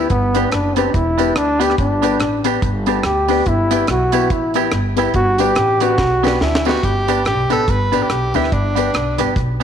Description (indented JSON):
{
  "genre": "ska",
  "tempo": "143 BPM",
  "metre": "4/4",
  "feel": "swing 58% on 8ths",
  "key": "G major",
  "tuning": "A4 = 439 Hz",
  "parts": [
    { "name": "warm trombone", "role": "melody", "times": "0.0-6.7 s", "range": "B3 to G4", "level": "-18 LUFS", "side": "equal", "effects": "none" },
    { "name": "semi-hollow electric guitar", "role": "accompaniment", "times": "0.0-9.6 s", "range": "B3 to G4", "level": "-23 LUFS", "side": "right 9 dB", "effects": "vibrato effect" },
    { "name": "dark upright piano", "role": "stabs", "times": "0.0-9.6 s", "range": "B3 to B4", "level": "-22 LUFS", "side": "left 8 dB", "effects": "tape echo" },
    { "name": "upright bass", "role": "bass", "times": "0.0-9.6 s", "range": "E1 to D2", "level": "-21 LUFS", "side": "equal", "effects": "none" },
    { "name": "deep reggae drum kit", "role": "drums", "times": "0.1-9.5 s", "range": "hi-hat, kick drum, rim click, snare drum", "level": "-22 LUFS", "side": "right 1 dB", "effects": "none" },
    { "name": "tambourine", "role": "percussion", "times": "0.3-9.6 s", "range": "none", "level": "-37 LUFS", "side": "right 14 dB", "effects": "tape echo" },
    { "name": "breathy tenor saxophone", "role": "melody", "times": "6.4-9.4 s", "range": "D4 to B4", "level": "-20 LUFS", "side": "right 1 dB", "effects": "none" }
  ],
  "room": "moderate echo chamber reverb, RT60 1.6 s",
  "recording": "1960s-style stereo with parts hard left and right",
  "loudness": "-14 LUFS",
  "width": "side -8 dB against mid",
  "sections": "0.0-6.8 A section; 6.8-9.6 B section",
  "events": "trombone solo 0.0-6.8; drum fill 6.0-6.8",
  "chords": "0.0 G; 3.5 Em/G; 5.2 G",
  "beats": "| 0.10 0.53 0.95 1.37 | 1.79 2.21 2.63 3.05 | 3.47 3.89 4.31 4.73 | 5.15 5.57 5.99 6.41 | 6.83 7.25 7.67 8.10 | 8.52 8.94 9.36"
}